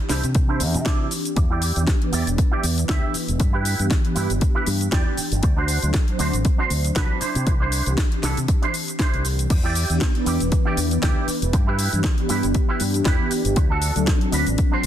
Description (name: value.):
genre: nu-disco, nu disco.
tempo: 118 BPM.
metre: 4/4.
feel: swing 56% on 16ths.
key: E minor.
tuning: A4 = 439 Hz.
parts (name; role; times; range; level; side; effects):
mellow synth brass; accompaniment; 0.0-14.9 s; E3 to C5; -26 LUFS; equal; chorus, cassette tape, sidechain pumping, digital delay.
electric guitar with an envelope filter; riff; 0.1-14.8 s; D4 to G5; -28 LUFS; right 4 dB; ensemble chorus, low-pass filter, digital delay.
fingered electric bass with an envelope filter; bass; 0.1-14.9 s; E1 to C3; -23 LUFS; equal; tube saturation, sidechain pumping.
house drum kit; drums; 0.1-14.9 s; crash cymbal, hi-hat, shaker, snare drum; -27 LUFS; left 1 dB; overdrive, studio reverb.
electronic kick drum; drums; 0.3-14.7 s; none; -20 LUFS; equal; overdrive, studio reverb.
room: light reverb, digital ambience.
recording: dense, heavily limited modern master.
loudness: -18 LUFS.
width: side -10 dB against mid.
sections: 0.0-14.9 A section.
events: filter sweep on clean electric guitar 0.0-14.9; filter sweep on analog polysynth 0.0-14.9; clean electric guitar fill 4.7-5.4.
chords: 0.0 Cadd9; 1.4 Em7; 3.4 G6; 5.4 D7; 7.2 Cadd9; 9.5 Em7; 11.5 G6; 13.6 D7.